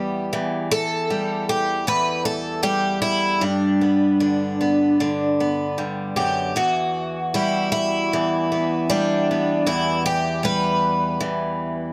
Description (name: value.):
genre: folk, solo fingerstyle acoustic guitar.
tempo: 78 BPM.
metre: 4/4.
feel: straight.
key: E minor.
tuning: A4 = 440 Hz.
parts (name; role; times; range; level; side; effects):
picked twelve-string acoustic guitar; solo; 0.0-11.9 s; E2 to B4; -22 LUFS; equal; none.
room: light reverb.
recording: close, detailed microphones.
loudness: -21 LUFS.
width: mono.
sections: 0.0-11.9 A section.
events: none.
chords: 0.0 Em; 3.4 G; 6.6 Emadd9; 9.7 Em.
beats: | 0.34 1.11 1.88 2.65 | 3.43 4.21 4.99 5.78 | 6.56 7.34 8.12 8.89 | 9.66 10.43 11.20.